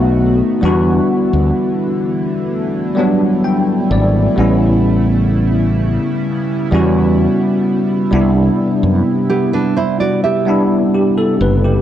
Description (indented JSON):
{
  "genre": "contemporary R&B",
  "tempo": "64 BPM",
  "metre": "4/4",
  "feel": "straight",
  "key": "unclear",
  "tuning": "A4 = 440 Hz",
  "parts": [
    { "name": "bell-like tine electric piano", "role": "accompaniment", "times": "0.0-11.8 s", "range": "F#3 to G5", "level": "-14 LUFS", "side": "left 1 dB", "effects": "ensemble chorus" },
    { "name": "chorused pulse-width pad", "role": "sustained chords", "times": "0.0-11.8 s", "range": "C3 to F#4", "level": "-21 LUFS", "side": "right 1 dB", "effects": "none" },
    { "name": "fretless electric bass", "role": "bass", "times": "0.0-11.8 s", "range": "F#1 to F#2", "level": "-14 LUFS", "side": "equal", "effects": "none" },
    { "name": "nylon-string guitar", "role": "arpeggios", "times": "9.3-11.6 s", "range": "B3 to E5", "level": "-18 LUFS", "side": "right 4 dB", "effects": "tape echo" }
  ],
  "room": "digital ambience",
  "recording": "dry, gritty hardware recording, cassette tape",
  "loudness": "-12 LUFS",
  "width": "side -11 dB against mid",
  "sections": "0.0-11.8 A section",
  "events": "tine electric piano fill 3.0-4.4",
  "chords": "0.0 B7; 0.6 Em7; 4.4 A7; 8.1 Cmaj7"
}